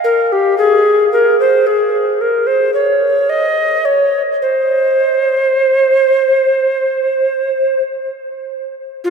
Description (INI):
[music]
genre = classical, baroque-style fantasia for unaccompanied recorder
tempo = 50-57 BPM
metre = 4/4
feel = rubato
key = unclear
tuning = A4 = 444 Hz
[part]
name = mellow tenor recorder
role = solo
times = 0.0-9.1 s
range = F4 to Eb5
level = -12 LUFS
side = equal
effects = none
[sound]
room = wet cathedral reverb, RT60 6.3 s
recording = in a vast, echoing space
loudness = -11 LUFS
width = side -6 dB against mid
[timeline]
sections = 0.0-9.0 A section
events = none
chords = none